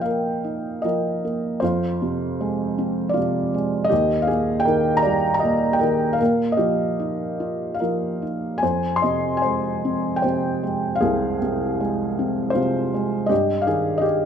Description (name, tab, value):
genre	classical, lyrical solo piano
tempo	77 BPM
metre	3/4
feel	uneven beats, rubato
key	F dorian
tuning	A4 = 440 Hz
part	felt-muted upright piano	solo	0.0-14.3 s	C2 to C6	-20 LUFS	equal	none
room	moderate recital hall reverb, RT60 1.4 s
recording	minimal, uncompressed stereo recording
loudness	-20 LUFS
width	side -8 dB against mid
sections	0.0-14.3 A section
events	none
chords	0.0 Bbsus4; 1.6 Fm; 3.9 Eb; 6.2 Bbsus4; 8.6 Fm; 13.3 Eb/G